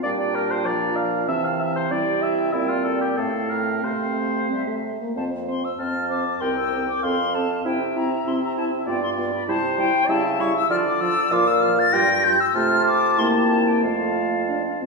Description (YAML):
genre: quick classical-period movement for wind quintet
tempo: 90-99 BPM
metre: 2/4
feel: rubato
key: F major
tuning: A4 = 440 Hz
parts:
  - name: bright concert flute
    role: melody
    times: 0.0-14.8 s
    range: E5 to Bb6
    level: -24 LUFS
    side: left 4 dB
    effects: none
  - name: warm oboe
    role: second line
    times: 0.0-14.8 s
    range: E4 to A5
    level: -26 LUFS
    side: equal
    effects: none
  - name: clear French horn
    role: accompaniment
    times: 0.0-14.9 s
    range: E3 to D4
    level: -27 LUFS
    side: equal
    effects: none
  - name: warm clarinet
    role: accompaniment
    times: 0.0-14.8 s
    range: C4 to C5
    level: -27 LUFS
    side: right 3 dB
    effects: none
  - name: clear bassoon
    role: bass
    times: 0.0-14.8 s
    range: C2 to D3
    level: -27 LUFS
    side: right 2 dB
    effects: none
room: wet recital hall reverb, RT60 1.8 s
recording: heard from further back in the room, small room ambience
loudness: -19 LUFS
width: side -2 dB against mid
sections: 0.0-5.2 A section; 5.2-14.9 B section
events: none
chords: 0.0 Gm7/Bb; 1.3 C; 2.5 C5/Bb; 3.2 F/A; 3.8 F/C; 4.5 C; 5.2 F; 6.4 C7; 7.0 F; 7.6 C; 8.9 G7; 9.5 C; 10.1 A7/C#; 10.7 Dm; 11.3 Bb5; 11.9 Gm7; 12.6 F/C; 13.2 C7; 13.8 F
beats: | 0.05 0.66 | 1.28 1.91 | 2.53 3.18 | 3.84 4.50 | 5.17 5.79 | 6.41 7.03 | 7.65 8.26 | 8.87 9.48 | 10.09 10.70 | 11.31 11.93 | 12.55 13.19 | 13.84 14.49